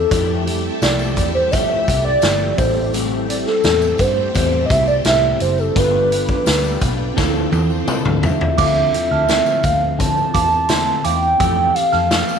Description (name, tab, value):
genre	indie pop, bedroom pop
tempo	85 BPM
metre	4/4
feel	straight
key	D minor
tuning	A4 = 438 Hz
part	hollow clarinet-like synth lead	melody	0.0-12.4 s	A4 to A5	-18 LUFS	right 1 dB	analog chorus, slapback echo
part	electric guitar at the edge of break-up	accompaniment	0.0-12.4 s	A2 to B4	-25 LUFS	left 14 dB	analog chorus, warbly pitch drift
part	mellow tine electric piano	accompaniment	0.0-12.4 s	E3 to C5	-27 LUFS	right 13 dB	medium stereo tremolo
part	phased string machine	sustained chords	0.0-8.6 s	D3 to E5	-29 LUFS	left 1 dB	ensemble chorus, phaser
part	vintage muted fingered electric bass	bass	0.0-12.2 s	F#1 to D3	-22 LUFS	equal	none
part	raw garage drum kit	drums	0.1-12.3 s	crash cymbal, hi-hat, kick drum, snare drum, toms	-21 LUFS	equal	none
part	tambourine	percussion	0.1-12.4 s	none	-36 LUFS	left 18 dB	none
part	soft synth bell	second line	8.6-12.4 s	E5 to F6	-24 LUFS	right 14 dB	wide subtle chorus, slapback echo
room	light reverb, small room ambience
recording	1960s-style stereo with parts hard left and right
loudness	-14 LUFS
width	side -7 dB against mid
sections	0.0-8.6 A section; 8.6-12.4 B section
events	soft synth lead solo 0.0-8.6; drum fill 7.2-8.6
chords	0.1 Fmaj9; 2.6 Am7; 5.8 G7; 7.2 Dm7; 8.6 Dm9; 11.4 Fmaj9